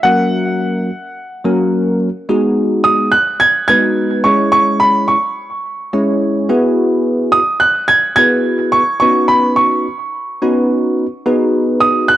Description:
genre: pop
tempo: 107 BPM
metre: 4/4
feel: straight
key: G# minor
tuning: A4 = 440 Hz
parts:
  - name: clear baby grand piano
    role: melody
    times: 0.0-12.2 s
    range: F#5 to G#6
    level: -13 LUFS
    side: right 2 dB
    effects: none
  - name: bell-like tine electric piano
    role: accompaniment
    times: 0.0-12.1 s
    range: F#3 to C#5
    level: -14 LUFS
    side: equal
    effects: analog chorus
room: small room ambience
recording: dry, gritty hardware recording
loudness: -11 LUFS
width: side -13 dB against mid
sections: 0.0-2.3 A section; 2.3-12.2 A section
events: none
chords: 0.0 F#; 2.3 G#m7; 4.3 C#m; 6.5 Eadd9; 9.0 Badd9; 11.3 G#m7

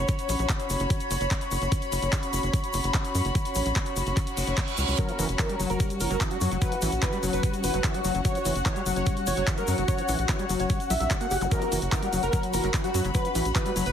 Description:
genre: psychedelic trance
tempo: 147 BPM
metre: 4/4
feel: straight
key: F# major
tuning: A4 = 440 Hz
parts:
  - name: evolving wavetable pad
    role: sustained chords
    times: 0.0-13.9 s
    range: F#4 to C#5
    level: -32 LUFS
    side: left 1 dB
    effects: phaser, built-in reverb, sidechain pumping
  - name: tight sequencer bass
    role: bass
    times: 0.0-13.9 s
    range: F#1 to F#2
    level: -29 LUFS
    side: equal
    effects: none
  - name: dark chamber string section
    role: texture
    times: 0.0-13.9 s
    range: C#4 to B5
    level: -34 LUFS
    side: left 2 dB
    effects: sidechain pumping
  - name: drum and bass drum kit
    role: drums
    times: 0.1-13.9 s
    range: handclaps, hi-hat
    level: -33 LUFS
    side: equal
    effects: overdrive, studio reverb
  - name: electronic kick drum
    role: drums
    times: 0.1-13.6 s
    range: none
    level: -27 LUFS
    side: equal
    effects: overdrive, studio reverb
  - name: tube shaker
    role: percussion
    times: 0.1-13.9 s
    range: none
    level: -38 LUFS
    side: left 6 dB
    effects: none
  - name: reverse cymbal and zap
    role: sound effects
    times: 4.3-5.0, 11.4-11.5 s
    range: none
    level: -33 LUFS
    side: right 5 dB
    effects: none
  - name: wide unison lead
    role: melody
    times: 5.0-13.9 s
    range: F#4 to F#5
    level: -32 LUFS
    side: right 1 dB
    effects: phaser, vintage 12-bit sampler grit, sidechain pumping, dub echo
  - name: overdriven acid bass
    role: riff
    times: 5.0-13.9 s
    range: E3 to G4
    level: -32 LUFS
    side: moving between left 4 dB and right 3 dB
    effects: auto-pan, sidechain pumping, dub echo
room: light reverb, digital ambience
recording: heavily compressed radio sound, multiband compression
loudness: -24 LUFS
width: side -9 dB against mid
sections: 0.0-13.9 A section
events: reverse cymbal 4.3-5.0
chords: 0.0 F#5

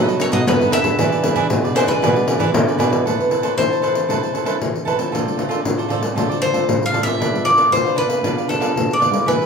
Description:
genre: samba and choro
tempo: 116 BPM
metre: 4/4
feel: straight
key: A minor from 3.1 s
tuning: A4 = 440 Hz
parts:
  - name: bowl-back mandolin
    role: melody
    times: 0.0-9.5 s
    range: A4 to F5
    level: -19 LUFS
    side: left 1 dB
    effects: none
  - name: cavaquinho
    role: accompaniment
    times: 0.0-9.5 s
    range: D4 to A5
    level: -24 LUFS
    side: right 6 dB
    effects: none
  - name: nylon-string guitar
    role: accompaniment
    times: 0.0-9.5 s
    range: F#2 to B4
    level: -24 LUFS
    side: left 1 dB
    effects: none
  - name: nylon-string guitar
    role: bass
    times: 0.0-3.0 s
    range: B2 to B3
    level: -22 LUFS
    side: right 1 dB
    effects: none
  - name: pandeiro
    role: percussion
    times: 0.1-9.5 s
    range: none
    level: -20 LUFS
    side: left 1 dB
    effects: none
room: wet large studio reverb, RT60 1.1 s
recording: band playing live in one room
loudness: -15 LUFS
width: side -6 dB against mid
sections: 0.0-3.1 A section; 3.1-9.5 B section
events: none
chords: 0.0 B7; 1.0 E7; 3.1 Amadd9; 5.1 Dm7; 7.2 Bdim

